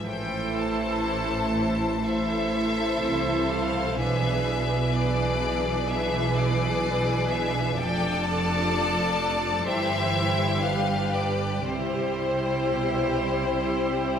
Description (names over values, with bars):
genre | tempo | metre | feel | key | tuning
classical, slow romantic movement for string orchestra | 62 BPM | 4/4 | uneven beats, rubato | C major from 7.8 s | A4 = 445 Hz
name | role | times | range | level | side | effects
clear chamber violin section | melody | 0.0-14.2 s | C5 to A5 | -30 LUFS | left 5 dB | none
rich chamber viola section | accompaniment | 0.0-14.2 s | E3 to E4 | -29 LUFS | right 2 dB | none
clear chamber violin section | second line | 0.1-14.2 s | G4 to D5 | -28 LUFS | left 1 dB | none
clear chamber double bass section | bass | 0.1-14.2 s | F1 to C2 | -31 LUFS | right 3 dB | none
warm studio cello section | bass | 0.1-14.2 s | F2 to C3 | -31 LUFS | right 2 dB | none
room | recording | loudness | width
wet concert hall reverb, RT60 1.8 s | recorded in a church or concert hall | -23 LUFS | side -8 dB against mid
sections
0.0-14.2 A section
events
none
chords
0.1 Am; 4.0 E7/B; 7.8 Dm/F; 9.7 C/G; 10.6 G7; 11.6 C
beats
| 0.07 1.08 2.07 3.05 | 4.00 4.95 5.88 6.83 | 7.76 8.71 9.66 10.62 | 11.65 12.71 13.76